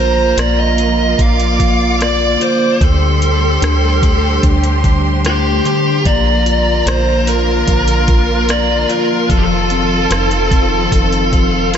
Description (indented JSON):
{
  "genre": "pop ballad",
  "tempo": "74 BPM",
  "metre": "4/4",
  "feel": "straight",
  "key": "Bb major",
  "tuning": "A4 = 441 Hz",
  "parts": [
    { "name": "fuzz lead guitar", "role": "melody", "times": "0.0-11.8 s", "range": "F4 to F5", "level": "-16 LUFS", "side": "equal", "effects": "distortion, tape echo" },
    { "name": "warm symphonic violin section", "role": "second line", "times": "0.0-11.8 s", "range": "F4 to D6", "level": "-22 LUFS", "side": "right 1 dB", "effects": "tape echo" },
    { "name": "mellow tine electric piano", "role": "accompaniment", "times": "0.0-11.8 s", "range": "D3 to F4", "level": "-20 LUFS", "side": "left 3 dB", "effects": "phaser" },
    { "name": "muted studio string section", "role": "sustained chords", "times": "0.0-11.8 s", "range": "A2 to G4", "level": "-21 LUFS", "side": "right 2 dB", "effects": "none" },
    { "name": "metallic FM bass", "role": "bass", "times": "0.0-11.8 s", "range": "F1 to D2", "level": "-16 LUFS", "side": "equal", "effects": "none" },
    { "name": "smooth R&B drum kit", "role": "drums", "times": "0.4-11.8 s", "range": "hi-hat, kick drum, rim click", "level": "-17 LUFS", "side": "equal", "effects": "none" }
  ],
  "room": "moderate church reverb, RT60 3.2 s",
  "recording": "dreamy mix soaked in reverb, nothing above 7.8 kHz",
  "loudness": "-11 LUFS",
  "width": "side -8 dB against mid",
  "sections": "0.0-11.8 A section",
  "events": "none",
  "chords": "0.0 Bb; 2.8 Dsus4; 6.1 Bb; 9.3 F7"
}